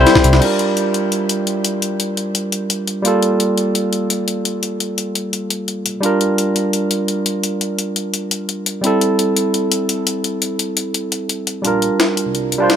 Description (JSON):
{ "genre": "liquid drum and bass", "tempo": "171 BPM", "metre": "4/4", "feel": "straight", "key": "Bb lydian", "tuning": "A4 = 439 Hz", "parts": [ { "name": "barky tine electric piano", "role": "accompaniment", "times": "0.0-12.8 s", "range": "G3 to C5", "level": "-17 LUFS", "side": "right 1 dB", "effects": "low-pass filter, dub echo" }, { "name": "dark detuned saw bass", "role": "bass", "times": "0.0-0.4, 11.6-12.8 s", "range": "Bb1 to C2", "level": "-17 LUFS", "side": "equal", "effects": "high-pass filter" }, { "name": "breakbeat sampler-style drum kit", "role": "drums", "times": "0.1-12.8 s", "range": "crash cymbal, hi-hat, snare drum", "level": "-19 LUFS", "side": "left 4 dB", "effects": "high-pass filter on hats, high-pass filter on snare, high-pass filter on cymbals" } ], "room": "light reverb", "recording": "none", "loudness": "-16 LUFS", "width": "side -9 dB against mid", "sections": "0.4-11.6 A section; 11.6-12.8 B section", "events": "drum fill 0.0-0.4; build-up 11.6-12.8; filter sweep on tine electric piano 11.6-12.8", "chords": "0.4 Bb6; 3.0 Gm9; 6.0 Bb6; 8.8 Am7; 11.6 Bb6", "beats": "0.07 | 0.42 0.77 1.12 1.47 | 1.82 2.17 2.52 2.87 | 3.23 3.58 3.93 4.28 | 4.63 4.98 5.33 5.68 | 6.03 6.38 6.73 7.08 | 7.43 7.79 8.14 8.49 | 8.84 9.19 9.54 9.89 | 10.24 10.59 10.94 11.29 | 11.65 12.00 12.35 12.70" }